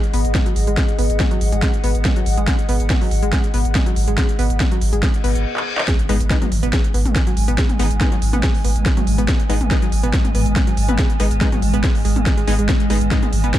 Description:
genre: driving peak-time techno.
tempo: 141 BPM.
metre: 4/4.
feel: straight.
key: G# minor.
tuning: A4 = 437 Hz.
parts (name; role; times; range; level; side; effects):
analog pluck; riff; 0.0-13.6 s; F#3 to G#4; -25 LUFS; equal; chorus, cassette tape, sidechain pumping, dub echo.
techno drum kit; drums; 0.0-13.6 s; handclaps, hi-hat, snare drum, toms; -24 LUFS; equal; sidechain pumping on hats, sidechain pumping on cymbals, sidechain pumping on toms.
warbly tape-like pad; texture; 0.0-13.6 s; G#4 to G#5; -29 LUFS; left 1 dB; chorus, built-in reverb, sidechain pumping.
saturated sub bass; bass; 0.1-13.5 s; G#1; -19 LUFS; equal; tube saturation, sidechain pumping, low-pass filter.
electronic kick drum; drums; 0.3-13.6 s; none; -19 LUFS; equal; none.
reverse cymbal and impact; sound effects; 5.2-7.6 s; none; -29 LUFS; left 2 dB; none.
swarming drone; drone; 6.6-13.6 s; G#2 to G#3; -26 LUFS; right 1 dB; built-in reverb, sidechain pumping.
supersaw stab; stabs; 6.1-13.2 s; G#3 to D#4; -26 LUFS; left 4 dB; sidechain pumping, ping-pong delay.
room: little or no reverb.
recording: dark, warm production.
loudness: -15 LUFS.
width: side -13 dB against mid.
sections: 0.0-5.9 A section; 5.9-13.6 B section.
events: reverse cymbal 5.2-5.9; stop 5.5-5.9; drum fill 5.6-5.9; drop 5.9-13.6; impact 5.9-7.6.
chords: 0.0 G#m.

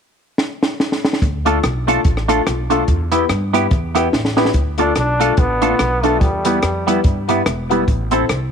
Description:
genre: ska.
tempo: 144 BPM.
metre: 4/4.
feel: swing 58% on 8ths.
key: D dorian.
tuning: A4 = 440 Hz.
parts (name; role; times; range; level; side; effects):
compact cocktail drum kit; drums; 0.4-8.4 s; hi-hat, kick drum, rim click, snare drum; -18 LUFS; equal; none.
upright bass; bass; 1.2-8.5 s; E1 to G2; -21 LUFS; equal; none.
semi-hollow electric guitar; accompaniment; 1.5-8.3 s; G3 to A4; -20 LUFS; right 12 dB; phaser.
clear upright piano; stabs; 1.5-8.3 s; A3 to C5; -20 LUFS; left 12 dB; none.
brilliant trombone; melody; 4.8-7.0 s; G3 to D4; -20 LUFS; equal; tape echo.
room: light reverb, small room ambience.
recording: 1960s-style stereo with parts hard left and right.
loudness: -14 LUFS.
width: side -7 dB against mid.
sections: 0.0-1.2 A section; 1.2-4.5 B section; 4.5-8.5 C section.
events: drum fill 0.4-1.2, 4.1-4.5.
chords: 0.0 N.C.; 1.2 Dm; 2.9 Em; 4.5 Dm; 6.2 Em; 7.9 Am.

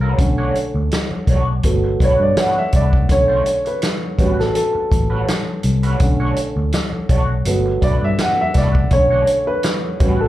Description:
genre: lush 1970s-style soul.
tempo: 82 BPM.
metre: 4/4.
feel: swing 54% on 16ths.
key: B minor.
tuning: A4 = 439 Hz.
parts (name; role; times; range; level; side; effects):
dark baby grand piano; accompaniment; 0.0-10.3 s; D3 to F#5; -19 LUFS; right 1 dB; plate reverb, slapback echo.
electric guitar through a small old amp; riff; 0.0-10.2 s; G3 to C#5; -25 LUFS; right 2 dB; wah, slapback echo.
vintage muted fingered electric bass; bass; 0.0-10.3 s; G1 to G2; -18 LUFS; left 1 dB; none.
vintage drum kit; drums; 0.2-10.2 s; hi-hat, kick drum, snare drum; -19 LUFS; equal; none.
room: light reverb.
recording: live gig heard through the venue's PA, club reverb.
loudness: -15 LUFS.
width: side -14 dB against mid.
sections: 0.0-10.3 A section.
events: grand piano solo 0.0-10.3.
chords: 0.2 Bm9; 1.6 Gmaj9; 3.1 Bm9; 4.2 A13; 6.0 Bm9; 7.5 Gmaj9; 8.9 Bm9.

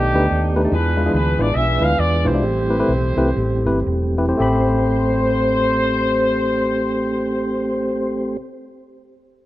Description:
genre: gospel.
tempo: 110-146 BPM.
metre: 4/4.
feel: swing 59% on 8ths.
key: A minor.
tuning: A4 = 440 Hz.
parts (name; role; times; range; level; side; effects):
dark horn section; melody; 0.0-8.4 s; D4 to F5; -21 LUFS; left 1 dB; none.
mellow tonewheel organ; sustained chords; 0.0-8.4 s; D#3 to D5; -23 LUFS; right 1 dB; slow rotary speaker.
hollow-body short-scale fingered electric bass; bass; 0.0-8.4 s; E1 to E2; -21 LUFS; equal; none.
tine electric piano; accompaniment; 0.1-8.4 s; A1 to B5; -22 LUFS; left 1 dB; none.
room: light reverb, digital ambience.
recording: rough home demo mix.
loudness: -16 LUFS.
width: side -15 dB against mid.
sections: 0.0-4.4 A section; 4.4-8.8 B section.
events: slowing down 0.7-4.4.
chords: 0.0 B7alt; 0.7 E7b9; 2.4 Am9.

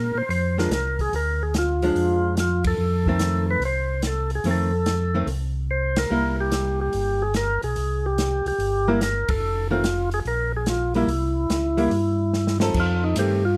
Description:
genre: soul jazz organ trio.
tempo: 145 BPM.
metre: 4/4.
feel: swing 66% on 8ths.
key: unclear.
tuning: A4 = 444 Hz.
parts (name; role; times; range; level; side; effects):
percussive tonewheel organ; melody; 0.0-13.6 s; Eb4 to C5; -27 LUFS; equal; slow rotary speaker.
mellow tonewheel organ; bass; 0.0-13.6 s; F1 to Bb2; -27 LUFS; equal; slow rotary speaker.
open jazz drum kit; drums; 0.3-13.3 s; crash cymbal, hi-hat, kick drum, ride cymbal, snare drum; -32 LUFS; equal; none.
archtop guitar, miked and amplified; accompaniment; 0.6-13.4 s; Eb3 to A4; -28 LUFS; equal; none.
room: light reverb.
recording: dark, warm production.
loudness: -23 LUFS.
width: mono.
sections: 0.0-12.8 A section.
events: band accent 2.6, 5.9, 9.2; drum fill 5.7-6.1, 12.3-12.8.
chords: 0.0 Bb7; 2.8 F7; 6.1 C7; 9.4 F7; 10.3 Edim/Bb; 11.1 C; 12.8 F7.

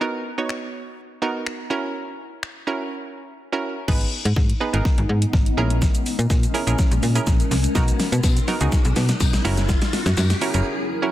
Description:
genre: dance-pop.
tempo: 124 BPM.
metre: 4/4.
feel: straight.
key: G# minor.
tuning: A4 = 441 Hz.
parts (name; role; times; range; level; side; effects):
hollow square pluck; accompaniment; 0.0-11.1 s; B3 to C#5; -26 LUFS; right 3 dB; chorus.
pop drum kit; drums; 0.5-10.6 s; crash cymbal, finger snaps, hi-hat, kick drum, shaker, snare drum; -21 LUFS; equal; soft clipping on snare.
granular cloud pad; sustained chords; 4.6-11.1 s; F#3 to A#4; -29 LUFS; left 1 dB; built-in reverb, sidechain pumping.
slap-like FM bass; bass; 3.9-10.6 s; F#1 to B2; -21 LUFS; equal; sidechain pumping.
riser; sound effects; 6.0-10.7 s; none; -33 LUFS; left 2 dB; none.
tambourine; percussion; 8.2-10.3 s; none; -33 LUFS; left 10 dB; none.
room: light reverb.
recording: dense, heavily limited modern master.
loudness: -19 LUFS.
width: side -14 dB against mid.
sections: 0.0-3.9 A section; 3.9-11.1 B section.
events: build-up 3.9-11.1; drum fill 3.9-10.7; riser 6.0-11.1; break 10.7-11.1.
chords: 0.0 Bmaj7; 1.7 F#7; 3.9 G#m; 5.6 A#m7b5; 7.8 Bmaj7; 9.4 F#7.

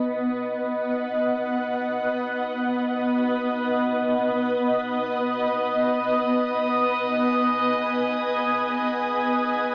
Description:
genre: ambient.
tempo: free time.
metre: none.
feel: none.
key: B major.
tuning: A4 = 440 Hz.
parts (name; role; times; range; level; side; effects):
granular cloud pad; sustained chords; 0.0-9.7 s; B3 to G#5; -25 LUFS; equal; built-in reverb, shimmer reverb.
organ-like drone; drone; 0.3-9.7 s; B3 to B4; -38 LUFS; equal; none.
clear chamber violin section; texture; 4.9-9.7 s; D#5 to D#6; -28 LUFS; equal; shimmer reverb.
room: wet cathedral reverb, RT60 6.0 s.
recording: in a vast, echoing space, AM radio sound.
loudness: -24 LUFS.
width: mono.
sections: 0.0-9.7 A section.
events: none.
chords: 0.0 B.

